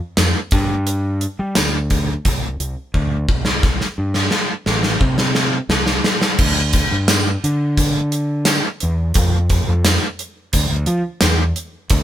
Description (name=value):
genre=classic rock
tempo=87 BPM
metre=4/4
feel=straight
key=D minor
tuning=A4 = 439 Hz
part: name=growling fingered electric bass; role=bass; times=0.2-12.0 s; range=A1 to G3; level=-19 LUFS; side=equal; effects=overdrive
part: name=gated 80s drum kit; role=drums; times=0.2-12.0 s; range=crash cymbal, hi-hat, kick drum, snare drum, tambourine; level=-17 LUFS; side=equal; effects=none
room=light reverb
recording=band playing live in one room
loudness=-16 LUFS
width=side -11 dB against mid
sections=0.0-3.6 A section; 3.6-6.4 B section; 6.4-12.0 C section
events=drum fill 2.9-3.6, 3.6-6.4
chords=none